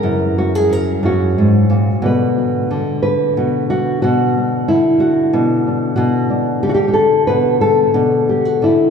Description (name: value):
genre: folk, solo fingerstyle acoustic guitar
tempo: 60 BPM (dotted quarters)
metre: 6/8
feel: rubato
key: unclear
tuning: A4 = 440 Hz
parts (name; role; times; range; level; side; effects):
- nylon-string guitar; solo; 0.0-8.9 s; F#2 to B4; -13 LUFS; left 1 dB; none
room: wet church reverb, RT60 3.7 s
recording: recorded in a church or concert hall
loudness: -13 LUFS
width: side -6 dB against mid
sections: 0.0-8.9 A section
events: none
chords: 0.0 F#7; 2.0 Bm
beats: | 0.04 1.04 | 2.04 3.04 | 4.03 5.01 | 5.98 6.97 | 7.96